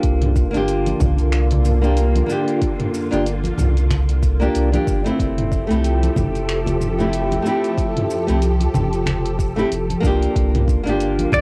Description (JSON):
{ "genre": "sunset chillout", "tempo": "93 BPM", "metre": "4/4", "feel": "swing 57% on 16ths", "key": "F major", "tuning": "A4 = 440 Hz", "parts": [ { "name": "flamenco guitar", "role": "accompaniment", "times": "0.0-11.4 s", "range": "A3 to C5", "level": "-24 LUFS", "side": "equal", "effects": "cassette tape, tape echo" }, { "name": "soft string machine", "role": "sustained chords", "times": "0.0-11.4 s", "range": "D3 to A4", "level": "-28 LUFS", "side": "equal", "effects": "phaser, ensemble chorus, cassette tape" }, { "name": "warm sub bass", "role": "bass", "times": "0.0-11.4 s", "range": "F1 to C2", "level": "-22 LUFS", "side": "equal", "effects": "none" }, { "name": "deep house drum kit", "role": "drums", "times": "0.0-11.4 s", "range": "finger snaps, hi-hat, shaker, toms", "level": "-30 LUFS", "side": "equal", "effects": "overdrive, cassette tape" }, { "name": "electronic kick drum", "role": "drums", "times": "0.0-11.4 s", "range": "none", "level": "-25 LUFS", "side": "equal", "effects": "overdrive, cassette tape" }, { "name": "congas", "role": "percussion", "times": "0.9-11.4 s", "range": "none", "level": "-28 LUFS", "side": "equal", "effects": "none" }, { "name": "pedal steel guitar", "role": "melody", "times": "11.3-11.4 s", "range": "D5", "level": "-17 LUFS", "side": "equal", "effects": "cassette tape" } ], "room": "moderate small room reverb, RT60 0.5 s", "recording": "home recording on cassette", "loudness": "-19 LUFS", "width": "mono", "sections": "0.0-11.4 A section", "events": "none", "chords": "0.0 C9sus4; 5.2 Fmaj9; 10.4 C9sus4" }